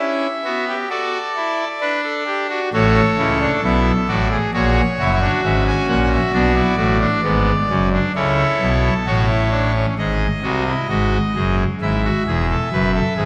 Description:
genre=classical, baroque-style 4-part fugue for pipe organ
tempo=66 BPM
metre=4/4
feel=straight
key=unclear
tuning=A4 = 442 Hz
part: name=pipe organ, trumpet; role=solo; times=0.0-13.3 s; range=E1 to G#5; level=-18 LUFS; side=equal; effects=none
room=wet concert hall reverb, RT60 2.0 s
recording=none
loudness=-18 LUFS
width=mono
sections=0.0-10.0 A section; 10.0-13.3 B section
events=none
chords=0.0 Em; 0.9 D; 2.7 A; 4.5 F#7; 6.3 Bm; 8.1 A; 10.0 G#7; 11.8 Eadd9

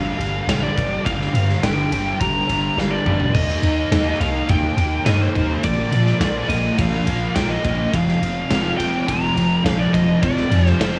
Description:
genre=rock, shoegaze and dream pop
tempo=105 BPM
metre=4/4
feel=straight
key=G minor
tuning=A4 = 440 Hz
part: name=fuzz lead guitar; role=melody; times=0.0-11.0 s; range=C5 to Bb5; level=-26 LUFS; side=equal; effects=distortion, cassette tape, analog delay
part: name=fuzz guitar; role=riff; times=0.0-11.0 s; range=F2 to Eb4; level=-23 LUFS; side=equal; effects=distortion, analog chorus, cassette tape
part: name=punchy sub bass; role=bass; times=0.0-11.0 s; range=Eb1 to Bb2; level=-25 LUFS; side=equal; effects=none
part: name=big rock drum kit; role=drums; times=0.2-10.9 s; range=crash cymbal, kick drum, ride cymbal, snare drum, toms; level=-27 LUFS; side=equal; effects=cassette tape
room=little or no reverb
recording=home recording on cassette, studio ambience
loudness=-19 LUFS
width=mono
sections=0.0-11.0 A section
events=drum fill 2.8-3.3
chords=0.0 Gm7; 3.3 Eb; 5.6 Bb5; 7.9 F5

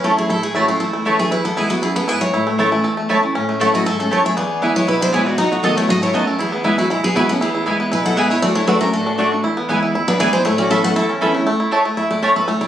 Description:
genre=bluegrass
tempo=237 BPM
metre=4/4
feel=straight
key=A major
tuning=A4 = 438 Hz
part: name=picked steel-string acoustic guitar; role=melody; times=0.0-11.0 s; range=E4 to G#5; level=-21 LUFS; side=equal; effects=plate reverb
part: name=picked steel-string acoustic guitar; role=accompaniment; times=0.0-12.7 s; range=E2 to E5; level=-22 LUFS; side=left 1 dB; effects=none
part: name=bluegrass banjo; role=arpeggios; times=0.0-12.7 s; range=E3 to A4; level=-20 LUFS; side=right 1 dB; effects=none
part: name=mandolin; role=stabs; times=0.0-12.3 s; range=A3 to B5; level=-19 LUFS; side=right 2 dB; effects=none
part: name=clear fiddle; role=second line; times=3.6-11.1 s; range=G#3 to B4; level=-24 LUFS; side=left 4 dB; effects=none
room=wet studio reverb, RT60 0.9 s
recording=recorded on a phone in the room, studio reverb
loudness=-15 LUFS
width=side -11 dB against mid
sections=0.0-3.4 A section; 3.4-11.5 B section; 11.5-12.7 C section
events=steel-string acoustic guitar solo 11.5-12.7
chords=0.0 A; 1.3 E; 2.3 A; 4.4 E; 5.4 B7; 6.4 E; 8.4 D; 9.4 E; 10.5 Aadd9; 11.5 A

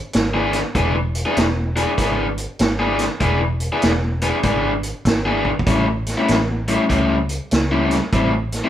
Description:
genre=electric blues shuffle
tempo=98 BPM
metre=4/4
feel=swing 64% on 8ths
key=E mixolydian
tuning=A4 = 439 Hz
part: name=vintage muted fingered electric bass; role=bass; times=0.1-8.6 s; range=E1 to C#2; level=-23 LUFS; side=equal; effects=none
part: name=vintage drum kit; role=drums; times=0.1-8.6 s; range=hi-hat, kick drum, snare drum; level=-22 LUFS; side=right 1 dB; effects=none
part: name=raw garage guitar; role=riff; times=0.3-8.7 s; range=A2 to G#4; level=-19 LUFS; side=left 1 dB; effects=overdrive
room=moderate studio reverb, RT60 0.7 s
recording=band playing live in one room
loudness=-17 LUFS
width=side -11 dB against mid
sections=0.0-8.7 A section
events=drum fill 5.4-5.7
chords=0.0 E7; 5.7 A7; 8.1 Am7

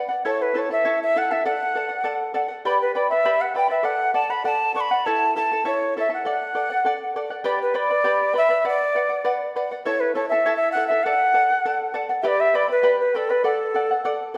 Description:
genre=andean folk, Andean ensemble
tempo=100 BPM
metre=2/4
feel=straight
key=unclear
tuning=A4 = 440 Hz
part: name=charango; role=accompaniment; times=0.0-14.4 s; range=E4 to B5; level=-27 LUFS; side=equal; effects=none
part: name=mellow quena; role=melody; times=0.3-14.3 s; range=A4 to C#6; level=-23 LUFS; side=equal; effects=none
room=wet recital hall reverb, RT60 1.2 s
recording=none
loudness=-22 LUFS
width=mono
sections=0.3-9.9 A section; 9.9-14.4 A section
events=none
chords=0.3 A; 1.5 D; 2.7 G; 3.9 D; 5.1 A; 6.3 D; 7.5 G; 8.7 Bm; 9.9 A; 11.1 D; 12.2 G; 13.4 D

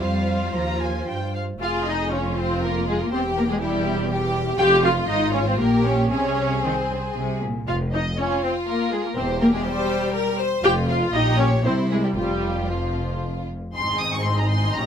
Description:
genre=quick classical-period movement for string orchestra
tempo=110-123 BPM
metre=3/4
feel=rubato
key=F minor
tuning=A4 = 439 Hz
part: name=rich symphonic violin section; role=melody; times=0.0-14.9 s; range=F4 to Eb6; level=-29 LUFS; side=left 1 dB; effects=none
part: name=rich studio violin section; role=second line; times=0.0-14.9 s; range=E4 to Eb5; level=-27 LUFS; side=left 1 dB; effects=none
part: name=rich symphonic viola section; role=accompaniment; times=0.0-14.9 s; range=F3 to G4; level=-24 LUFS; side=left 1 dB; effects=none
part: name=rich studio double bass section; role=bass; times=0.0-14.9 s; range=E1 to G2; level=-27 LUFS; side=right 1 dB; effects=none
part: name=rich symphonic cello section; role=bass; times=0.0-14.9 s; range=E2 to G3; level=-28 LUFS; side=right 1 dB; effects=none
room=light reverb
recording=close, detailed microphones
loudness=-20 LUFS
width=side -8 dB against mid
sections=0.0-1.6 A section; 1.6-13.7 A section; 13.7-14.9 B section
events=none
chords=0.0 F5; 1.6 Fm; 3.1 Em; 4.6 Fm; 5.6 Gdim/Bb; 6.1 Abadd11/C; 7.2 Abadd9/C; 7.7 Bbm/F; 9.2 C/E; 10.6 N.C.; 11.1 Gdim/Bb; 11.6 C; 12.2 Fsus2; 13.7 Ab

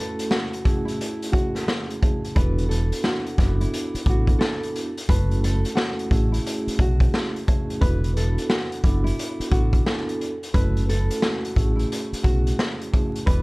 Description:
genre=hip hop, boom-bap hip-hop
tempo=88 BPM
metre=4/4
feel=swing 63% on 16ths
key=F# minor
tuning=A4 = 440 Hz
part: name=nylon-string guitar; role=melody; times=0.0-13.4 s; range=E4 to B4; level=-31 LUFS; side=equal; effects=analog delay
part: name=vibraphone with soft mallets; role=accompaniment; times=0.0-13.4 s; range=A3 to A4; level=-29 LUFS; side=right 1 dB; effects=cassette tape
part: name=raw garage drum kit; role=drums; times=0.2-13.4 s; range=hi-hat, kick drum, snare drum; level=-23 LUFS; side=equal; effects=none
part: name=deep dub fingered electric bass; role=bass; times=2.4-13.4 s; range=E1 to B1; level=-22 LUFS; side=equal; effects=none
room=little or no reverb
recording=dark, warm production, vinyl crackle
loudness=-20 LUFS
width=side -25 dB against mid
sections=0.0-13.4 A section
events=break 0.0-2.4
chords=0.0 F#m7; 2.4 E7sus4; 5.1 F#m7; 7.8 E7sus4; 10.5 F#m7

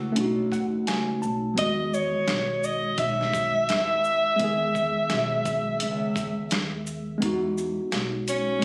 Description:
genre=hip hop, jazz-hop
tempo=85 BPM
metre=4/4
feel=swing 63% on 16ths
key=E major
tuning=A4 = 442 Hz
part: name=clear alto saxophone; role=melody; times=0.0-8.6 s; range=C#4 to E5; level=-27 LUFS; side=equal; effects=plate reverb, tape echo
part: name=mellow tine electric piano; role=accompaniment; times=0.0-8.6 s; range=D#3 to A5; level=-30 LUFS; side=equal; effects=plate reverb
part: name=upright bass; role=bass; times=0.0-8.6 s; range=B1 to E2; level=-37 LUFS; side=equal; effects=none
part: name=boom bap sampler-style drum kit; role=drums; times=0.2-8.6 s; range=hi-hat, kick drum, shaker, snare drum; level=-32 LUFS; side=equal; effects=none
room=moderate small room reverb, RT60 0.6 s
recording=recorded on a phone in the room, studio reverb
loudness=-26 LUFS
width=mono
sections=0.0-7.2 A section; 7.2-8.6 B section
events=tine electric piano fill 0.2-1.6; alto saxophone solo 7.2-8.6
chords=0.2 B9; 1.6 Emaj9

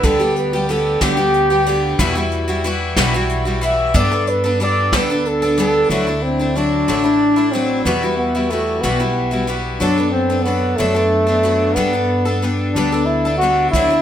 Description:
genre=acoustic folk duo or small band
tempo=61 BPM (dotted quarters)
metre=6/8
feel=straight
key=unclear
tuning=A4 = 439 Hz
part: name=mellow flugelhorn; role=melody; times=0.0-14.0 s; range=A3 to E5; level=-17 LUFS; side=equal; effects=none
part: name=picked twelve-string acoustic guitar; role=accompaniment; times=0.0-14.0 s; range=E2 to A4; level=-19 LUFS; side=left 2 dB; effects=none
part: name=upright bass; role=bass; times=0.0-14.0 s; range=A1 to G2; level=-23 LUFS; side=right 1 dB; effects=none
part: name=soft brush drum kit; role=drums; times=0.0-5.7, 13.7-13.9 s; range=hi-hat, kick drum, snare drum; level=-21 LUFS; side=equal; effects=none
room=moderate large studio reverb, RT60 1.2 s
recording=none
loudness=-14 LUFS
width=side -10 dB against mid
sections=0.0-5.9 A section; 5.9-14.0 B section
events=flugelhorn solo 0.0-5.9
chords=0.0 G/D; 2.0 Emadd9; 3.9 Gadd9; 5.9 Dadd9; 7.9 Emadd9; 9.8 Bm7/F#; 11.8 Gadd9

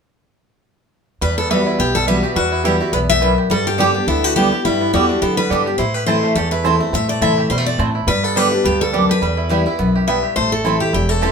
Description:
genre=bluegrass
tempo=210 BPM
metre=4/4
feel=swing 55% on 8ths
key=E minor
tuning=A4 = 440 Hz
part: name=bluegrass banjo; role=melody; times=1.2-11.3 s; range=G3 to G4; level=-24 LUFS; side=right 5 dB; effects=none
part: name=picked steel-string acoustic guitar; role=melody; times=1.2-11.3 s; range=E4 to E5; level=-19 LUFS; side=left 3 dB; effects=none
part: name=picked steel-string acoustic guitar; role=accompaniment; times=1.2-11.3 s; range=E2 to G4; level=-19 LUFS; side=left 1 dB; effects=none
part: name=upright bass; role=bass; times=1.2-11.3 s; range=E1 to C3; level=-23 LUFS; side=equal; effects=none
part: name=mandolin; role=stabs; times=1.5-11.3 s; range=G3 to A5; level=-20 LUFS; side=right 7 dB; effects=none
room=moderate studio reverb, RT60 0.5 s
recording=minimal, uncompressed stereo recording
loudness=-14 LUFS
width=side -6 dB against mid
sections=1.2-10.4 A section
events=none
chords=1.2 Emadd9; 3.5 G; 5.8 Am; 8.1 G; 9.2 Em; 10.4 Am

